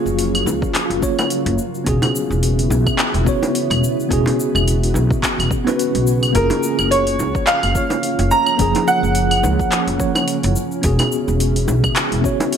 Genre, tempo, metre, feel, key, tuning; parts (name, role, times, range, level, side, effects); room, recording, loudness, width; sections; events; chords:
sunset chillout; 107 BPM; 4/4; swing 57% on 16ths; F# major; A4 = 440 Hz
tine electric piano; accompaniment; 0.0-12.6 s; E#3 to C#5; -21 LUFS; equal; medium stereo tremolo, auto-pan, digital delay
shimmering ambient pad; sustained chords; 0.0-12.6 s; C#3 to F#4; -25 LUFS; equal; chorus, built-in reverb
upright bass; bass; 0.1-12.2 s; E1 to C#2; -19 LUFS; equal
deep house drum kit; drums; 0.1-12.6 s; claves, handclaps, hi-hat, shaker; -22 LUFS; equal; overdrive
bongos; percussion; 0.5-12.5 s; -26 LUFS; right 2 dB
electronic kick drum; drums; 0.6-12.4 s; -23 LUFS; equal; overdrive
bright grand piano; melody; 6.4-10.5 s; A#4 to A#5; -19 LUFS; right 2 dB; digital delay
moderate scoring stage reverb, RT60 1.5 s, digital ambience; -15 LUFS; side -8 dB against mid
0.0-12.6 A section
0.0 F#maj7; 1.6 E6; 6.4 F#maj7; 10.6 E6